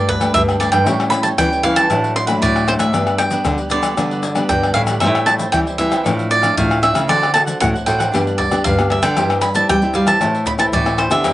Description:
samba and choro; 116 BPM; 4/4; straight; A4 = 440 Hz
cavaquinho; melody; 0.0-11.3 s; B4 to C6; -18 LUFS; right 2 dB; slapback echo
cavaquinho; accompaniment; 0.0-11.3 s; D4 to G5; -27 LUFS; right 4 dB; slapback echo
nylon-string guitar; accompaniment; 0.0-11.3 s; G2 to A4; -22 LUFS; left 1 dB; slapback echo
nylon-string guitar; bass; 0.0-11.3 s; G2 to G3; -20 LUFS; equal
surdo, pandeiro, maracas and tamborim; percussion; 0.1-11.3 s; -20 LUFS; left 4 dB
little or no reverb; recorded outdoors, with no room sound, nothing above 10.9 kHz; -14 LUFS; side -15 dB against mid
0.0-11.3 A section
0.0 Gsus2; 0.9 A7; 1.9 D/A; 2.9 G; 5.0 Am7; 6.1 F6/A; 7.1 D7; 8.1 G; 9.2 C/G; 10.2 Am

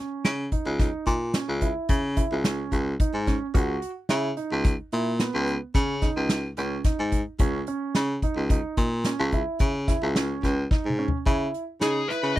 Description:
progressive instrumental, band music in an uneven meter; 109 BPM; 7/4; straight; C# dorian; A4 = 441 Hz
dark concert grand piano; arpeggios; 0.0-12.4 s; B3 to F#4; -31 LUFS; right 4 dB
bright baritone saxophone; bass; 0.2-12.4 s; C#2 to C#3; -26 LUFS; left 1 dB
unplugged drum kit; drums; 0.2-12.4 s; hi-hat, kick drum, snare drum, toms; -24 LUFS; equal
dark smooth lead guitar; melody; 11.8-12.4 s; G#4 to D#5; -25 LUFS; left 2 dB; overdrive
little or no reverb; dry, close 1970s-style studio recording; -23 LUFS; side -15 dB against mid
0.0-11.3 A section; 11.3-12.4 B section
drum fill 10.7-11.3
0.0 C#madd9; 11.3 C#m9

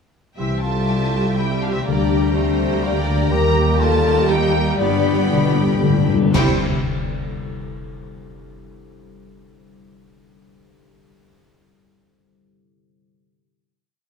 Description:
cinematic, heroic adventure film score; 113-125 BPM; 3/4; straight; A4 = 440 Hz
warm symphonic violin section; melody; 0.4-6.6 s; C5 to Bb5; -27 LUFS; left 2 dB
dark cor anglais; second line; 0.4-6.6 s; G3 to G4; -29 LUFS; right 4 dB
rich symphonic violin section; second line; 0.4-6.6 s; G4 to B5; -31 LUFS; left 1 dB
warm symphonic viola section; accompaniment; 0.4-6.6 s; G3 to G4; -26 LUFS; right 2 dB
clear trombone section; sustained chords; 0.4-6.6 s; E3 to E4; -28 LUFS; right 1 dB
mellow French horn section; sustained chords; 0.4-6.6 s; C4 to Bb4; -24 LUFS; left 5 dB
concert harp; arpeggios; 0.4-6.6 s; G2 to C5; -25 LUFS; left 9 dB
dark symphonic cello section; bass; 0.4-6.6 s; C2 to C3; -25 LUFS; right 2 dB
rich symphonic double bass section; bass; 0.4-6.6 s; G1 to Eb2; -23 LUFS; right 1 dB
cymbal swell, clash cymbals and concert bass drum; percussion; 3.3-7.3 s; -31 LUFS; equal
timpani; percussion; 4.8-6.6 s; G2 to C3; -24 LUFS; left 3 dB
moderate scoring stage reverb, RT60 1.8 s; -16 LUFS; side -6 dB against mid
0.4-6.3 theme; 6.3-7.9 final chord
slowing down 2.6-6.3; timpani fill 4.8-6.3; band accent 6.3-6.9
0.4 C; 1.9 Gm/D; 3.3 Eb; 4.8 G; 6.3 C

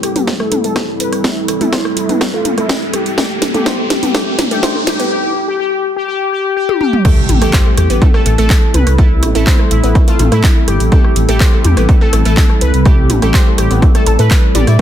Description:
melodic techno; 124 BPM; 4/4; straight; A minor; A4 = 438 Hz
resonant sweep polysynth; melody; 0.0-14.8 s; E4 to D5; -19 LUFS; left 3 dB; chorus, sidechain pumping, dub echo
dark analog pad; sustained chords; 0.0-14.8 s; G3 to A4; -21 LUFS; equal; chorus, sidechain pumping
techno drum kit; drums; 0.0-14.8 s; crash cymbal, handclaps, hi-hat, rim click, snare drum, toms; -18 LUFS; left 1 dB; small room reverb
riser and impact; sound effects; 1.2-9.0 s; -22 LUFS; equal
analog pluck; arpeggios; 0.2-14.8 s; G3 to C5; -21 LUFS; right 2 dB; chorus, cassette tape, sidechain pumping, ping-pong delay
electronic kick drum; drums; 0.3-14.8 s; -11 LUFS; equal; high-pass filter on kick, small room reverb
swelling detuned saw bass; bass; 7.3-14.8 s; G1 to A2; -12 LUFS; equal; sidechain pumping
light reverb, digital ambience; dense, heavily limited modern master; -10 LUFS; side -10 dB against mid
0.0-7.0 A section; 7.0-14.8 B section
build-up 0.0-7.0; drum fill 0.0-5.1, 6.7-7.0; filter sweep on synth pluck 0.0-7.0; filter sweep on analog polysynth 0.0-7.0; riser 1.2-5.1; drop 7.0-14.8; impact 7.0-9.0
0.0 Am7

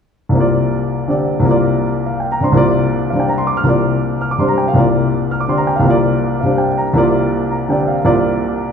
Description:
jazz; 163 BPM; 3/4; swing 63% on 8ths; A4 = 441 Hz
warm baby grand piano; accompaniment; 0.3-8.7 s; C2 to F6; -13 LUFS; equal
wet concert hall reverb, RT60 2.3 s; recorded in a church or concert hall; -13 LUFS; side -7 dB against mid
0.3-8.7 A section
0.3 C9sus4

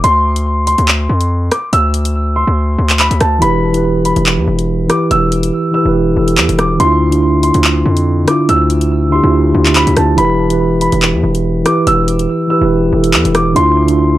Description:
hip hop, drill; 142 BPM; 4/4; half-time; E phrygian; A4 = 440 Hz
warm concert grand piano; melody; 0.0-14.2 s; A5 to E6; -16 LUFS; equal; low-pass filter, tape echo
distorted 808-style bass; bass; 0.0-14.2 s; E1 to F2; -15 LUFS; equal; distortion
drill drum kit; drums; 0.0-14.0 s; handclaps, hi-hat, rim click; -15 LUFS; equal
mellow tine electric piano; accompaniment; 3.4-14.2 s; D3 to B4; -13 LUFS; right 1 dB; slow stereo tremolo, low-pass filter
little or no reverb; -10 LUFS; side -14 dB against mid
0.0-10.2 A section; 10.2-14.2 A section
0.0 Dm; 3.4 Em; 6.8 Dmadd9; 10.2 Em; 13.6 Dmadd9

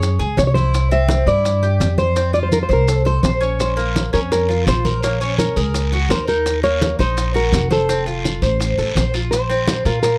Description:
latin, Cuban son and guajira; 168 BPM; 4/4; straight; Bb minor; A4 = 440 Hz
nylon-string guitar; melody; 0.0-10.2 s; Ab4 to E5; -22 LUFS; equal
Cuban tres; arpeggios; 0.0-10.2 s; Bb3 to Db5; -26 LUFS; equal
upright bass; bass; 0.0-10.2 s; F1 to Bb2; -22 LUFS; equal
bongos; percussion; 0.0-10.2 s; -29 LUFS; equal
congas; percussion; 0.0-10.2 s; -28 LUFS; equal
maracas; percussion; 0.0-10.2 s; -34 LUFS; equal
guiro; percussion; 3.6-10.2 s; -33 LUFS; equal
little or no reverb; dry, close 1970s-style studio recording; -18 LUFS; mono
0.0-9.3 A section
0.0 Gbsus2; 0.7 C; 2.2 F; 3.6 Bbm; 5.0 Gb/Bb; 6.5 Ebm; 7.9 F; 9.3 Bbsus2

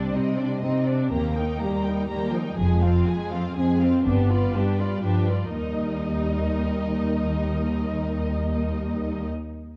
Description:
cinematic, heroic adventure film score; 122 BPM; 3/4; straight; Eb major; A4 = 440 Hz
dark symphonic violin section; melody; 0.0-9.3 s; B4 to Bb5; -38 LUFS; equal
warm symphonic violin section; second line; 0.0-9.3 s; C4 to B4; -38 LUFS; equal
warm studio viola section; accompaniment; 0.0-9.2 s; Ab3 to F4; -36 LUFS; equal
dark French horn section; sustained chords; 0.0-9.3 s; F3 to C4; -28 LUFS; equal
rich symphonic double bass section; bass; 0.0-9.2 s; F1 to Eb2; -30 LUFS; equal
warm studio cello section; bass; 0.0-9.3 s; Eb2 to C3; -29 LUFS; equal
wet recital hall reverb, RT60 1.4 s; dark, warm production; -24 LUFS; mono
0.0-5.5 A section; 5.5-8.5 B section
0.0 Cmadd9; 1.1 Eb; 2.6 Fm; 4.1 G7; 5.5 Eb

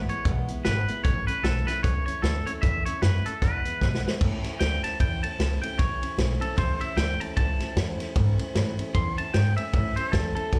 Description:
rockabilly; 152 BPM; 4/4; swing 59% on 8ths; A major; A4 = 440 Hz
picked steel-string acoustic guitar; accompaniment; 0.0-10.6 s; E2 to F#4; -38 LUFS; equal; slapback echo
upright bass; bass; 0.0-10.6 s; G#1 to B2; -29 LUFS; equal
twangy electric guitar; melody; 0.1-10.6 s; A4 to C6; -33 LUFS; equal; slapback echo, analog delay
vintage drum kit; drums; 0.1-10.6 s; crash cymbal, hi-hat, kick drum, ride cymbal, snare drum; -30 LUFS; equal
small room ambience; live gig heard through the venue's PA, club reverb; -26 LUFS; mono
0.0-4.2 A section; 4.2-10.6 B section
drum fill 3.8-4.2; clean electric guitar solo 4.2-10.6
0.0 E; 1.0 A; 3.4 E; 4.2 A

